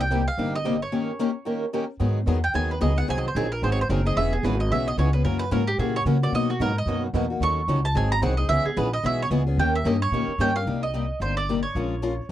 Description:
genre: acoustic string swing (jazz manouche)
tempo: 222 BPM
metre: 4/4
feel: swing 57% on 8ths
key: G# minor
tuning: A4 = 440 Hz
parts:
  - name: mandolin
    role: melody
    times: 0.0-12.3 s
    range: F#4 to C#6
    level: -27 LUFS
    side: right 3 dB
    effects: none
  - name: picked steel-string acoustic guitar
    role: accompaniment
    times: 0.0-12.3 s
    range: B2 to Bb4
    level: -28 LUFS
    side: left 7 dB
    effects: none
  - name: picked swing-style acoustic guitar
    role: accompaniment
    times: 0.0-10.5 s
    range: B2 to Bb4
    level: -30 LUFS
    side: right 7 dB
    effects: none
  - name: upright bass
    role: bass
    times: 0.0-12.3 s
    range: E1 to C#3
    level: -25 LUFS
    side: equal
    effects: none
room: little or no reverb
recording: dry, close 1970s-style studio recording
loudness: -22 LUFS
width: side -12 dB against mid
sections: 0.0-2.0 A section; 2.0-10.7 B section; 10.7-12.3 A section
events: break 0.9-2.0; mandolin solo 2.0-10.7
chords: 0.0 Cm7; 0.9 Eb7; 2.0 G#m7; 3.1 G#7; 4.2 C#m7; 5.2 F#7; 6.3 Bmaj7; 7.4 D#m7b5; 8.0 G#7; 8.5 C#m7; 9.6 D#7; 10.7 Cm7; 11.7 Bbm7

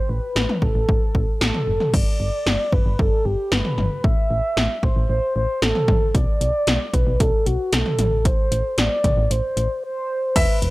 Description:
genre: synth-pop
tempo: 114 BPM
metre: 4/4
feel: straight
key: unclear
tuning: A4 = 441 Hz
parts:
  - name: mellow horn-like synth lead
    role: melody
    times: 0.0-10.7 s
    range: F#4 to E5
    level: -23 LUFS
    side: equal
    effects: chorus, analog delay
  - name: solid FM bass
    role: bass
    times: 0.1-10.7 s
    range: E1 to B1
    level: -23 LUFS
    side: equal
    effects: tube saturation
  - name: 80s electronic pad drums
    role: drums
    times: 0.4-10.7 s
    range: crash cymbal, hi-hat, kick drum, snare drum, toms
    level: -20 LUFS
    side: equal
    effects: gated reverb on snare and toms
  - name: clear concert grand piano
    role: second line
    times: 10.4-10.6 s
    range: E5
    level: -22 LUFS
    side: right 1 dB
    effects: none
room: little or no reverb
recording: dry, gritty hardware recording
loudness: -18 LUFS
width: side -20 dB against mid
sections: 0.0-1.9 A section; 1.9-10.4 B section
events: break 9.8-10.4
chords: 0.0 F#madd11 (rootless); 1.9 G; 4.0 A5; 6.1 Bm; 8.0 Am

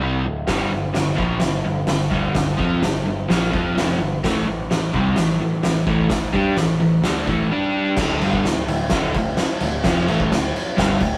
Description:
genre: garage rock duo or trio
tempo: 128 BPM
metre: 4/4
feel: straight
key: unclear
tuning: A4 = 438 Hz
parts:
  - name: crunchy overdriven guitar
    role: riff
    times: 0.0-11.2 s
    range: D2 to G4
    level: -23 LUFS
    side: equal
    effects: none
  - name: growling picked electric bass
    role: bass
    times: 0.0-11.2 s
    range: D1 to G2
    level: -27 LUFS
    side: equal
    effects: overdrive, tube saturation
  - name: oversized low-tuned drum kit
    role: drums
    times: 0.5-11.1 s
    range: crash cymbal, hi-hat, kick drum, ride cymbal, snare drum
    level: -24 LUFS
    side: equal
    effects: none
room: moderate stone room reverb, RT60 1.0 s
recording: rough rehearsal-room recording, tube saturation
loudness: -20 LUFS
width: mono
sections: 0.0-8.0 A section; 8.0-11.2 B section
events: none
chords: 0.5 G5; 4.2 A5; 7.5 G5; 8.0 D5

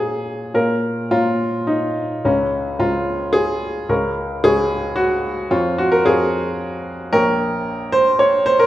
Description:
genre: classical, romantic character piece for solo piano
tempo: 110 BPM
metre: 3/4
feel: rubato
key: Bb minor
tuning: A4 = 441 Hz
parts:
  - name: warm upright piano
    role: solo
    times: 0.0-8.7 s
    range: Bb1 to Db6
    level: -16 LUFS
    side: equal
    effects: none
room: wet recital hall reverb, RT60 1.4 s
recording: none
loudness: -16 LUFS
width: side -14 dB against mid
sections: 0.6-8.7 A section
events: none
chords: 0.0 Bbm; 2.3 Bbm/Db; 3.9 Db; 5.5 Db/F; 7.1 Gdim/Bb

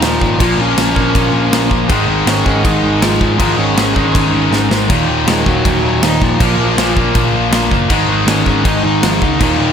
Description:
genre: punk rock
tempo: 160 BPM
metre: 4/4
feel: straight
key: unclear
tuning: A4 = 440 Hz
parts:
  - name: dark smooth lead guitar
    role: melody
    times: 0.0-9.7 s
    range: F3 to Eb5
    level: -18 LUFS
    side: right 1 dB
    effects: overdrive
  - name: crunchy overdriven guitar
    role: riff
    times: 0.0-9.7 s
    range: Eb2 to Bb3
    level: -20 LUFS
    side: right 11 dB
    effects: none
  - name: distorted electric guitar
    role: riff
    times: 0.0-9.7 s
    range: Eb2 to Bb3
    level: -17 LUFS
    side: left 14 dB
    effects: overdrive
  - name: sludgy distorted guitar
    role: riff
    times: 0.0-9.7 s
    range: Eb2 to Bb3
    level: -20 LUFS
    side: right 1 dB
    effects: overdrive
  - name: picked electric bass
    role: bass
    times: 0.0-9.7 s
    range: Eb1 to Db2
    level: -18 LUFS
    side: equal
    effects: none
  - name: big rock drum kit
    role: drums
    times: 0.0-9.5 s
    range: crash cymbal, kick drum, snare drum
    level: -17 LUFS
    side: equal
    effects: none
room: light reverb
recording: none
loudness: -11 LUFS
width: side -8 dB against mid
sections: 0.0-9.7 A section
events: drum fill 4.5-4.9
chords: 0.4 Bbm; 1.9 Ab5; 4.9 Ebm; 6.4 Bb5; 7.9 Ab5

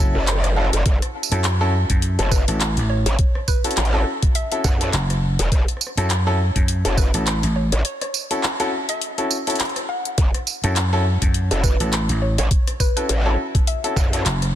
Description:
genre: glitch hop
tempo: 103 BPM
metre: 4/4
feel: swing 57% on 16ths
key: F# minor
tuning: A4 = 435 Hz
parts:
  - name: clear grand piano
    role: stabs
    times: 0.0-14.2 s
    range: C#4 to A4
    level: -26 LUFS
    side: left 1 dB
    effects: sidechain pumping, ping-pong delay
  - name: vintage slap bass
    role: bass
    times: 0.0-14.6 s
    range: F#1 to F#2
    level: -20 LUFS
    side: equal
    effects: none
  - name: growl bass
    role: bass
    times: 0.1-14.2 s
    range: E1 to F#2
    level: -20 LUFS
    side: equal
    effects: chorus, tube saturation
  - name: drum and bass drum kit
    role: drums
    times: 0.3-14.5 s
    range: handclaps, hi-hat, rim click, tambourine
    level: -25 LUFS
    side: equal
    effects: none
  - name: woody wave-folded pluck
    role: melody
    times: 0.6-14.4 s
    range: B4 to F#5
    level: -31 LUFS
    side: equal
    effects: wide subtle chorus, ping-pong delay
  - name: electronic kick drum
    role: drums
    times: 0.9-14.1 s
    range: none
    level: -19 LUFS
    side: equal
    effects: none
room: digital ambience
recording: dense, heavily limited modern master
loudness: -18 LUFS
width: side -12 dB against mid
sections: 0.0-14.6 A section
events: break 7.8-10.2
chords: 0.0 F#m7

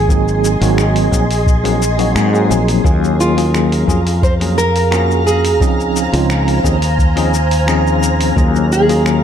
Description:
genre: sunset chillout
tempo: 87 BPM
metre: 4/4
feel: straight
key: Eb dorian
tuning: A4 = 440 Hz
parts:
  - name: nylon-string guitar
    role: melody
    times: 0.0-9.2 s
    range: F4 to C5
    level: -18 LUFS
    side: right 2 dB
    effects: digital delay
  - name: bell-like tine electric piano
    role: accompaniment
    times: 0.0-9.2 s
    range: F3 to Ab4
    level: -18 LUFS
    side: moving between left 7 dB and right 6 dB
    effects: medium stereo tremolo, auto-pan, tape echo
  - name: soft string machine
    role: sustained chords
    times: 0.0-9.2 s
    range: Ab4 to C6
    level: -20 LUFS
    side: right 1 dB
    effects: ensemble chorus
  - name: fretless electric bass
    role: bass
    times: 0.0-9.2 s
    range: Ab1 to Ab2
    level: -16 LUFS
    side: equal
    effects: none
  - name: dusty soul sampler-style drum kit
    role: drums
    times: 0.1-9.2 s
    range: cabasa, finger snaps, hi-hat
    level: -25 LUFS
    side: left 2 dB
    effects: studio reverb
  - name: electronic kick drum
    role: drums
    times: 0.1-8.5 s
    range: none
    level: -15 LUFS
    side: equal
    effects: studio reverb
  - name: twinkling granular texture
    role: texture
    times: 3.7-9.2 s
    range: Bb5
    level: -26 LUFS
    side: equal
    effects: built-in reverb
room: light reverb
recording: dark, warm production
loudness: -11 LUFS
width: side -9 dB against mid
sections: 0.0-9.2 A section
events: none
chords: 0.0 Ab7; 2.9 Ebm11; 5.6 Dbmaj7; 8.4 Ebm11

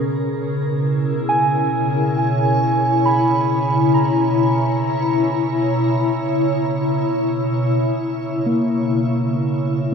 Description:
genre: ambient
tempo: 51 BPM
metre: 4/4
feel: straight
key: C# dorian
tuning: A4 = 441 Hz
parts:
  - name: glassy FM pad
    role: sustained chords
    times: 0.0-9.9 s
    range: B2 to C#5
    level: -18 LUFS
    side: left 1 dB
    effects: ensemble chorus, built-in reverb, tremolo, shimmer reverb
  - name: muted felt-like synth keys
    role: arpeggios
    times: 1.3-9.9 s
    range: A#3 to B5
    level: -22 LUFS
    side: right 2 dB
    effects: chorus, diffuse ambient delay, shimmer reverb
room: wet huge ambient reverb, RT60 8.2 s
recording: none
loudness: -16 LUFS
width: side -6 dB against mid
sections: 0.0-9.9 A section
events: none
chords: 0.0 C#m7

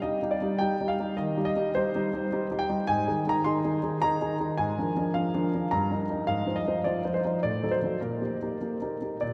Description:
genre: classical-period piano sonatina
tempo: 106 BPM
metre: 3/4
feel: straight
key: Eb major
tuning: A4 = 440 Hz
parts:
  - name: warm concert grand piano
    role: solo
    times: 0.0-9.3 s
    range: G2 to C6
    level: -28 LUFS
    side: equal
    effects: none
room: wet cathedral reverb, RT60 6.2 s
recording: in a vast, echoing space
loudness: -28 LUFS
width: mono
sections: 0.0-9.3 A section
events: none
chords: 0.0 Cm (rootless); 1.2 Cm/Eb; 2.9 Ab; 4.6 Bb7/Ab; 5.7 Eb/G; 6.3 Fm7/Ab; 7.4 Adim7; 8.0 Eb/Bb

